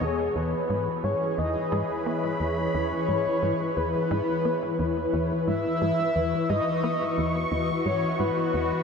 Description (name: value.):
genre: ambient, sequencer-driven space music.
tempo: 88 BPM.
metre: 4/4.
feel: straight.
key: E major.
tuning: A4 = 439 Hz.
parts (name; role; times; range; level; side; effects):
breathy flute-like synth lead; melody; 0.0-8.8 s; G#4 to E5; -28 LUFS; left 1 dB; analog chorus, ping-pong delay.
sweeping resonant pad; sustained chords; 0.0-8.8 s; E3 to C#6; -27 LUFS; left 1 dB; chorus.
tight sequencer bass; riff; 0.0-8.7 s; E2 to B3; -31 LUFS; right 1 dB; analog chorus, ping-pong delay.
room: wet huge ambient reverb, RT60 8.1 s.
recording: dreamy mix soaked in reverb.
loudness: -24 LUFS.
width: side -6 dB against mid.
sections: 0.0-8.8 A section.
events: none.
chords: 0.0 E.